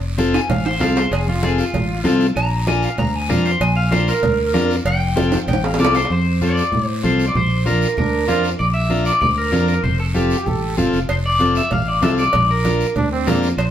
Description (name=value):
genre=latin, cumbia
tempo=193 BPM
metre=4/4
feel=straight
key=F major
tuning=A4 = 440 Hz
part: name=fingered electric bass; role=bass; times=0.0-13.7 s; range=F1 to A2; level=-20 LUFS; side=equal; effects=none
part: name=overdriven combo organ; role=accompaniment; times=0.2-13.5 s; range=C4 to Bb4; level=-21 LUFS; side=left 3 dB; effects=none
part: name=congas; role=percussion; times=0.2-13.7 s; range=none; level=-25 LUFS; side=right 2 dB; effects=none
part: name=guiro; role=percussion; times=0.2-13.7 s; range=none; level=-33 LUFS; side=right 3 dB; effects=none
part: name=electric guitar at the edge of break-up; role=melody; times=0.3-13.6 s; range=F4 to Bb5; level=-20 LUFS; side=equal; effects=spring reverb
part: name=timbales and cowbell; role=percussion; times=0.3-6.1, 11.1-13.7 s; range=none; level=-25 LUFS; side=right 3 dB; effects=none
part: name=brilliant trombone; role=second line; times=8.0-13.5 s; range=Bb3 to A4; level=-24 LUFS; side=right 4 dB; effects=none
room=wet studio reverb, RT60 0.8 s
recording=band playing live in one room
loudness=-15 LUFS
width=side -10 dB against mid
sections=0.0-6.1 A section; 6.1-13.7 B section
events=clean electric guitar solo 0.0-6.1; drum fill 0.3-1.1, 5.3-6.1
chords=0.0 F; 2.4 Bb; 4.9 F; 7.3 Bb; 9.8 F; 12.3 Bb